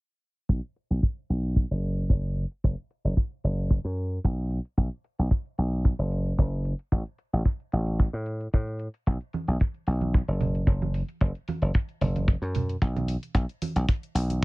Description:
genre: nu-disco, nu disco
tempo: 112 BPM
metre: 4/4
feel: swing 53% on 16ths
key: unclear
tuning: A4 = 440 Hz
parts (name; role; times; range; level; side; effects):
- dry thumbed slap bass; bass; 0.5-14.4 s; F#1 to A2; -26 LUFS; equal; none
- electronic hi-hat; drums; 0.5-14.4 s; none; -46 LUFS; left 4 dB; overdrive
- kick drum; drums; 0.5-14.0 s; none; -22 LUFS; equal; none
- congas; percussion; 9.3-14.4 s; none; -32 LUFS; right 3 dB; none
room: little or no reverb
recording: low-pass filter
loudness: -25 LUFS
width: side -22 dB against mid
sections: 0.5-14.4 A section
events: filter sweep on slap bass 0.5-14.4; filter sweep 0.5-14.4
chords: none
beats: | 0.49 1.03 1.57 2.10 | 2.64 3.17 3.71 4.24 | 4.78 5.32 5.85 6.39 | 6.92 7.46 7.99 8.53 | 9.07 9.60 10.14 10.67 | 11.21 11.74 12.28 12.82 | 13.35 13.89 14.42

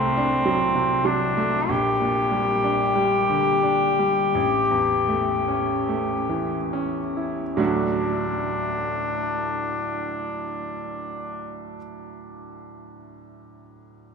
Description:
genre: classical, romantic duo for cor anglais and grand piano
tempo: 33-55 BPM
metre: 4/4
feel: rubato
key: D major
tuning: A4 = 441 Hz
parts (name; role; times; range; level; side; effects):
- dark cor anglais; melody; 0.0-11.7 s; C4 to G4; -23 LUFS; left 3 dB; none
- clear baby grand piano; accompaniment; 0.0-14.1 s; A1 to F#4; -26 LUFS; right 3 dB; none
room: wet cathedral reverb, RT60 7.5 s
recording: in a vast, echoing space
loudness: -21 LUFS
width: side -5 dB against mid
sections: 0.0-7.6 A section; 7.6-13.9 B section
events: slowing down 0.0-7.6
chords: 0.0 D7/C; 1.7 Gm/Bb; 4.3 A7; 7.6 D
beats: 0.45 | 1.69 2.95 4.34 5.88 | 7.58 9.17 10.75 12.31

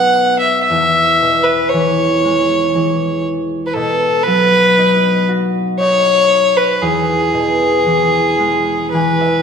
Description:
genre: celtic folk, Celtic slow air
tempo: 59 BPM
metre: 3/4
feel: rubato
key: E major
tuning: A4 = 439 Hz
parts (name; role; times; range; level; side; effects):
- rich fiddle; melody; 0.0-9.4 s; G#4 to F#5; -13 LUFS; equal; none
- concert harp; accompaniment; 0.0-9.4 s; E2 to G#5; -16 LUFS; left 2 dB; none
room: wet concert hall reverb, RT60 1.8 s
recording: recorded in a church or concert hall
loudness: -12 LUFS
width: side -6 dB against mid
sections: 0.0-9.4 A section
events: harp fill 8.4-9.4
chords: 0.0 B; 0.7 E; 3.8 B; 6.8 E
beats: | 0.70 1.73 2.75 | 3.76 4.77 5.79 | 6.81 7.84 8.92

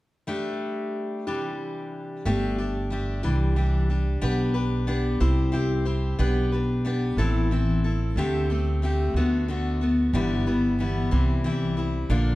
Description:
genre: acoustic folk duo or small band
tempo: 61 BPM (dotted quarters)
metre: 6/8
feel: straight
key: G major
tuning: A4 = 440 Hz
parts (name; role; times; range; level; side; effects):
- picked steel-string acoustic guitar; accompaniment; 0.3-12.4 s; G2 to C5; -26 LUFS; left 1 dB; none
- upright bass; bass; 2.3-12.4 s; G1 to D2; -24 LUFS; right 1 dB; none
room: moderate recital hall reverb, RT60 1.4 s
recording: dark, warm production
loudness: -22 LUFS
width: side -17 dB against mid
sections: 0.3-2.3 A section; 2.3-12.4 B section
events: none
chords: 0.3 Gsus2; 1.3 Cadd9; 2.3 Gsus2; 3.2 Cadd9; 4.2 G/B; 5.2 C; 6.2 G/B; 7.2 Am; 8.2 D7sus4; 9.1 D6; 10.1 G6; 11.1 C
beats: | 0.28 1.27 | 2.25 3.24 | 4.23 5.21 | 6.20 7.18 | 8.16 9.15 | 10.13 11.11 | 12.10

